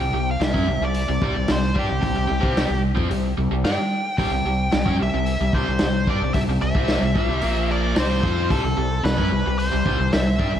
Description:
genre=classic rock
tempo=111 BPM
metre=4/4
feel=straight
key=C major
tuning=A4 = 435 Hz
part: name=nasal lead guitar with a parked wah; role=melody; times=0.0-10.6 s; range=G4 to G5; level=-26 LUFS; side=equal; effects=overdrive, slapback echo
part: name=biting overdriven guitar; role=riff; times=0.0-10.6 s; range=Bb2 to F4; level=-24 LUFS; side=left 1 dB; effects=slapback echo
part: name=growling fingered electric bass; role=bass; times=0.0-10.6 s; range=Bb1 to G2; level=-25 LUFS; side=equal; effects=overdrive
part: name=vintage drum kit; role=drums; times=0.4-10.5 s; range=hi-hat, kick drum, snare drum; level=-24 LUFS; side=equal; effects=none
room=light reverb, studio ambience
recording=none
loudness=-19 LUFS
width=side -10 dB against mid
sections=0.0-10.6 A section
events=none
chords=0.0 C; 7.4 Bb5; 8.0 C5

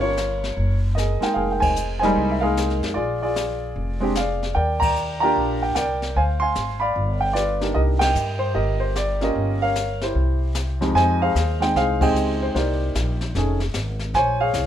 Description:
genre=jazz piano trio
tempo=150 BPM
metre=4/4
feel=swing 64% on 8ths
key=C minor, F minor from 11.0 s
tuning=A4 = 442 Hz
part: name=warm grand piano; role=melody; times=0.0-14.7 s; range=F2 to C6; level=-21 LUFS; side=right 1 dB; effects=none
part: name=upright bass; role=bass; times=0.0-14.7 s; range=F1 to G2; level=-24 LUFS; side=equal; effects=none
part: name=jazz brush drum kit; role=drums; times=0.2-14.7 s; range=brushed snare drum, hi-hat, kick drum, ride cymbal, snare drum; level=-30 LUFS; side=left 2 dB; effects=none
room=light reverb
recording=minimal, uncompressed stereo recording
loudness=-19 LUFS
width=side -10 dB against mid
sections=0.0-11.0 A section; 11.0-14.7 B section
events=band accent 1.6, 4.8, 8.0, 12.0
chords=0.0 Gm7b5; 0.6 F#add9; 1.4 Fm11; 3.0 Bb7; 4.6 Ebmaj7; 6.2 Dm7b5; 7.0 G7; 7.8 Cm9; 9.4 Gm7b5; 10.2 C; 11.0 Fm9; 12.5 Cm7; 13.3 F7alt; 14.1 Bbm9

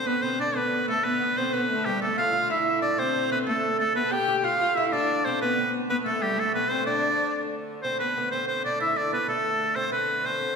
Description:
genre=medieval dance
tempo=124 BPM (dotted quarters)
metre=6/8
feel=straight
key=D dorian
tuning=A4 = 440 Hz
part: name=bright shawm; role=melody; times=0.0-10.6 s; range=G4 to G5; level=-25 LUFS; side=equal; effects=none
part: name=clear viola da gamba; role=second line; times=0.0-7.5 s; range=G3 to A4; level=-30 LUFS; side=left 4 dB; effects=none
part: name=oud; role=second line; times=0.0-10.5 s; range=G3 to G4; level=-31 LUFS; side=right 5 dB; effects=none
part: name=clear hurdy-gurdy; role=drone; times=0.0-10.6 s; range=D3 to A3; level=-35 LUFS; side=left 2 dB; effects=none
room=wet scoring stage reverb, RT60 1.8 s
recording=recorded in a church or concert hall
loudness=-23 LUFS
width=side -5 dB against mid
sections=0.1-7.8 A section; 7.8-10.6 B section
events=none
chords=none

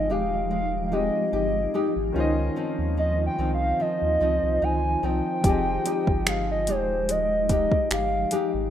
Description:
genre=contemporary R&B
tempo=73 BPM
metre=4/4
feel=swing 54% on 16ths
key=F minor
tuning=A4 = 440 Hz
part: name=hollow clarinet-like synth lead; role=melody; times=0.0-8.5 s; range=C5 to Ab5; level=-26 LUFS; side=equal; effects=chorus, tape echo
part: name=warm concert grand piano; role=accompaniment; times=0.0-8.7 s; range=Eb3 to Eb5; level=-33 LUFS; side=left 2 dB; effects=none
part: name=granular cloud pad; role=sustained chords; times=0.0-8.7 s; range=Eb3 to G5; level=-31 LUFS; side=right 1 dB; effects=built-in reverb, sidechain pumping
part: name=nylon-string guitar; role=arpeggios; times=0.0-8.7 s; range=F3 to G4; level=-29 LUFS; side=left 4 dB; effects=none
part: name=warm sub bass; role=bass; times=0.0-8.7 s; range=Eb1 to Eb2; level=-29 LUFS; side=right 1 dB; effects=none
part: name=smooth R&B drum kit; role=drums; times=5.4-8.5 s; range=finger snaps, hi-hat, kick drum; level=-24 LUFS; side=right 1 dB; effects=overdrive
room=light reverb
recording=rough home demo mix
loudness=-22 LUFS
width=side -10 dB against mid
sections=0.0-8.7 A section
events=none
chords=0.0 Fm9; 2.2 Dbmaj9; 5.4 Fm9

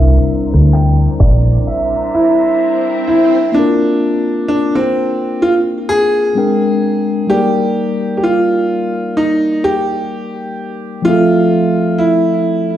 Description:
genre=contemporary R&B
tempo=64 BPM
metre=4/4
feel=swing 58% on 16ths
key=unclear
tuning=A4 = 440 Hz
part: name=clear baby grand piano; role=melody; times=0.0-12.8 s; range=C4 to G5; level=-14 LUFS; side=right 1 dB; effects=tape echo
part: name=mellow tine electric piano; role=accompaniment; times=0.0-12.8 s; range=F3 to G5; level=-17 LUFS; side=left 2 dB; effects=slow stereo tremolo
part: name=clear studio string section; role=sustained chords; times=0.0-3.5 s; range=D4 to Bb5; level=-28 LUFS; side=left 1 dB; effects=none
part: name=vintage muted fingered electric bass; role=bass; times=0.0-1.6 s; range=Bb1 to D2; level=-10 LUFS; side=equal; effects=none
part: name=swell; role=sound effects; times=1.9-3.5 s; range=none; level=-25 LUFS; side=right 1 dB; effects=none
part: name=smooth R&B drum kit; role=drums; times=0.5-1.5 s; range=handclaps, hi-hat, kick drum, rim click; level=-14 LUFS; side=equal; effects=none
room=light reverb, digital ambience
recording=played on a big sound system in a bare room, large studio reverb, low-pass filter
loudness=-11 LUFS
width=side -11 dB against mid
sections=0.0-3.5 A section; 3.5-12.8 B section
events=filter sweep 0.0-3.5; break 1.7-3.5; swell 1.9-3.5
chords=0.0 C9; 3.5 Bbadd9; 6.4 Bb13; 7.3 Ebmaj7; 11.0 Fmaj7

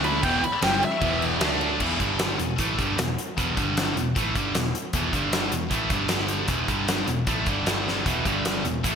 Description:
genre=hard rock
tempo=153 BPM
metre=4/4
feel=straight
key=unclear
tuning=A4 = 439 Hz
part: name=biting lead guitar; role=melody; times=0.0-1.2 s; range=E5 to B5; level=-26 LUFS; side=equal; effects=overdrive, digital delay
part: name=distorted electric guitar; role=riff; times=0.0-9.0 s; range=E2 to D4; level=-28 LUFS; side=right 10 dB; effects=overdrive
part: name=distorted electric guitar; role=riff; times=0.0-1.8, 8.1-9.0 s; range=E2 to D4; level=-32 LUFS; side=equal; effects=distortion
part: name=scooped high-gain guitar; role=riff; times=0.0-9.0 s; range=E2 to D4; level=-28 LUFS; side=left 9 dB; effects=distortion
part: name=vintage muted picked electric bass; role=bass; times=0.0-9.0 s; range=E1 to D2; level=-32 LUFS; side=equal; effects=none
part: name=huge arena drum kit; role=drums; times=0.0-8.9 s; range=crash cymbal, hi-hat, kick drum, snare drum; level=-27 LUFS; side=equal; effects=gated reverb
room=moderate plate reverb, RT60 2.1 s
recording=bright 1980s-style digital production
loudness=-22 LUFS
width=side -7 dB against mid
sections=0.0-1.8 A section; 1.8-9.0 B section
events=lead electric guitar solo 0.0-1.8; drum fill 7.9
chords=0.2 E5; 1.4 D5; 1.8 E5; 2.0 G5; 2.4 E5; 3.6 G5; 4.0 E5; 5.1 G5; 5.5 E5; 6.1 G5; 6.5 E5; 6.7 G5; 7.1 E5; 7.7 G5; 8.1 E5; 8.3 G5

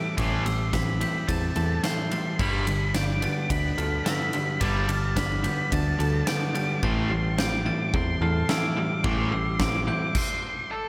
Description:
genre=post-rock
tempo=108 BPM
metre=4/4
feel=straight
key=A minor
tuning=A4 = 440 Hz
part: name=octave-fuzz lead guitar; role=melody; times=0.0-10.9 s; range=A4 to D6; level=-33 LUFS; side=equal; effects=distortion, delay
part: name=glockenspiel with brass mallets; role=arpeggios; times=0.0-10.2 s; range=D6 to A6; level=-39 LUFS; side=equal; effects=delay
part: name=semi-hollow electric guitar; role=arpeggios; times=0.0-10.2 s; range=A2 to A4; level=-36 LUFS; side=equal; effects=spring reverb, delay
part: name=biting overdriven guitar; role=riff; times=0.0-10.1 s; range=G2 to A3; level=-32 LUFS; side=equal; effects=none
part: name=picked electric bass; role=bass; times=0.2-9.9 s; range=G1 to E2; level=-31 LUFS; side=equal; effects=none
part: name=huge arena drum kit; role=drums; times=0.2-10.3 s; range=crash cymbal, kick drum, ride cymbal, snare drum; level=-32 LUFS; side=equal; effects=none
room=moderate plate reverb, RT60 2.0 s, studio reverb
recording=dreamy mix soaked in reverb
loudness=-26 LUFS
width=mono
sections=0.0-10.9 A section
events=build-up 0.0-10.9; stop 10.2-10.9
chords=0.0 Am7; 2.4 Gadd9; 6.8 Am7

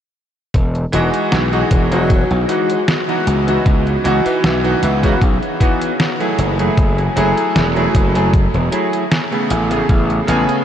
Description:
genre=vaporwave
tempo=77 BPM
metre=4/4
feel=swing 53% on 16ths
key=E major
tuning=A4 = 440 Hz
part: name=gritty slap bass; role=bass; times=0.5-10.5 s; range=E1 to C#2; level=-17 LUFS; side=equal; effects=overdrive, tube saturation
part: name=detuned 8-bit digital drum machine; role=drums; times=0.5-10.6 s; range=hi-hat, snare drum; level=-23 LUFS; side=equal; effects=vintage 12-bit sampler grit
part: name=electronic kick drum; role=drums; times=0.5-10.1 s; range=none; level=-14 LUFS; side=equal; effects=vintage 12-bit sampler grit
part: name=clear electric grand piano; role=accompaniment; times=0.9-10.6 s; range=C#3 to G#4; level=-16 LUFS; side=equal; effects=lush chorus, tape echo
part: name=breathy tenor saxophone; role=melody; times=1.9-5.4 s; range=C#3 to F#3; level=-26 LUFS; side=left 1 dB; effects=tape echo
room=wet huge ambient reverb, RT60 7.5 s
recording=dreamy mix soaked in reverb, cassette tape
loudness=-13 LUFS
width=side -10 dB against mid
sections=0.5-10.6 A section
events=none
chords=0.5 Emaj9; 3.3 C#m11; 6.4 F#m9; 9.5 Amaj9

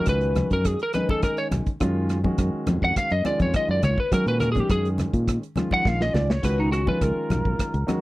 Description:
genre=electric jazz fusion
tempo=104 BPM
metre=4/4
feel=straight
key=F# major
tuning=A4 = 440 Hz
part: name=lightly driven lead guitar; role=melody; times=0.0-8.0 s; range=D#4 to F#5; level=-25 LUFS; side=equal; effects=slapback echo
part: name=dark grand piano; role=accompaniment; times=0.0-8.0 s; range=D#3 to G#4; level=-29 LUFS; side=equal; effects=none
part: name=fingered electric bass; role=bass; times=0.1-7.9 s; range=A#1 to F#3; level=-24 LUFS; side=equal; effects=none
part: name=modern studio drum kit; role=drums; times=0.1-8.0 s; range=hi-hat, kick drum, rim click, snare drum, splash cymbal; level=-26 LUFS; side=equal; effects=none
part: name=congas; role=percussion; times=0.4-8.0 s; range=none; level=-30 LUFS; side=left 2 dB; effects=none
room=little or no reverb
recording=dry, close 1970s-style studio recording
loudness=-21 LUFS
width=side -18 dB against mid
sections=0.0-8.0 A section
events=lead electric guitar solo 0.0-8.0; drum fill 5.9-6.4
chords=0.0 C#7sus4; 1.8 F#maj9; 6.4 C#7sus4

